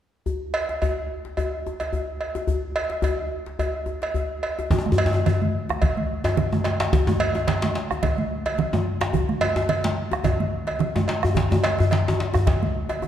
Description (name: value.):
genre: west african traditional, West African drum ensemble.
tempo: 108 BPM.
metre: 4/4.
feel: swing 55% on 16ths.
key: none.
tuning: none.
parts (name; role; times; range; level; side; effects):
djembe; percussion; 0.3-13.1 s; none; -29 LUFS; left 3 dB; none.
cowbell; percussion; 0.5-13.0 s; none; -27 LUFS; right 2 dB; none.
bombo; percussion; 4.7-13.1 s; none; -28 LUFS; right 2 dB; none.
congas; percussion; 4.7-13.1 s; none; -26 LUFS; right 4 dB; none.
djembe; percussion; 4.7-12.6 s; none; -23 LUFS; left 2 dB; none.
room: wet recital hall reverb, RT60 1.6 s.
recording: dark, warm production.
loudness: -21 LUFS.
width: side -10 dB against mid.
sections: 0.3-4.7 A section; 4.7-13.1 B section.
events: none.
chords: none.